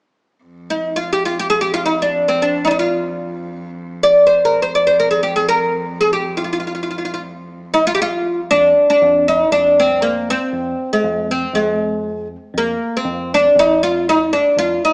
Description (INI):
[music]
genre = Arabic maqam ensemble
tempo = free time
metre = none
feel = none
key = F maqam rast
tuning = A4 = 437 Hz
[part]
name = rich cello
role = drone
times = 0.4-8.6 s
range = F2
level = -31 LUFS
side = equal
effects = none
[part]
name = oud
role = melody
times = 0.7-14.9 s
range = Ab3+50c to D5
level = -13 LUFS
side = equal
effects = none
[part]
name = bell-like tine electric piano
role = bass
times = 8.5-14.8 s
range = F2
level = -27 LUFS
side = equal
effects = analog chorus
[sound]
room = moderate recital hall reverb, RT60 1.4 s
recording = small speaker sound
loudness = -13 LUFS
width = side -34 dB against mid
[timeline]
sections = 0.4-8.5 A section; 8.5-14.9 B section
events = none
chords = none